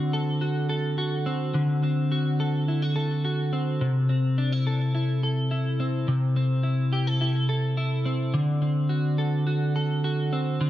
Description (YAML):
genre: dream pop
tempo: 106 BPM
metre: 4/4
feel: straight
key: unclear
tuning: A4 = 440 Hz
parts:
  - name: clean electric guitar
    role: solo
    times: 0.0-10.7 s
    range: C3 to A4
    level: -23 LUFS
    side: equal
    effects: analog chorus, tape echo
room: moderate echo chamber reverb, RT60 1.9 s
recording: echo-heavy mix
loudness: -23 LUFS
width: side -13 dB against mid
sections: 0.0-10.7 A section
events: none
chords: 0.0 D7; 3.8 C6; 8.3 D7